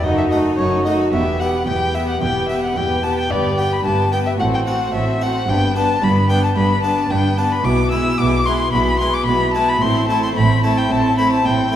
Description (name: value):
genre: classical, baroque-style concerto movement with solo episodes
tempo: 110 BPM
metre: 4/4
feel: straight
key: A minor from 7.6 s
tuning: A4 = 438 Hz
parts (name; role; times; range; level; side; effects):
- rich chamber violin section; melody; 0.0-11.8 s; G#4 to B4; -32 LUFS; left 4 dB; none
- warm violin; melody; 0.0-11.7 s; C#5 to E6; -20 LUFS; left 2 dB; none
- clear chamber violin section; second line; 0.0-11.8 s; D4 to G4; -24 LUFS; equal; none
- harpsichord; accompaniment; 0.0-11.8 s; E2 to C5; -24 LUFS; equal; none
- rich chamber viola section; accompaniment; 0.0-11.8 s; B3 to D#4; -24 LUFS; equal; none
- rich chamber double bass section; bass; 0.0-11.8 s; E1 to B1; -23 LUFS; right 2 dB; none
- rich studio cello section; bass; 0.0-11.8 s; E2 to B2; -24 LUFS; right 2 dB; none
room: wet recital hall reverb, RT60 1.6 s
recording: heard from further back in the room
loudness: -15 LUFS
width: side -10 dB against mid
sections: 0.0-11.8 A section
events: none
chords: 0.0 D#dim/F#; 1.1 Em; 3.3 G; 4.4 F#dim/A; 5.5 G; 7.6 E/B; 9.8 Am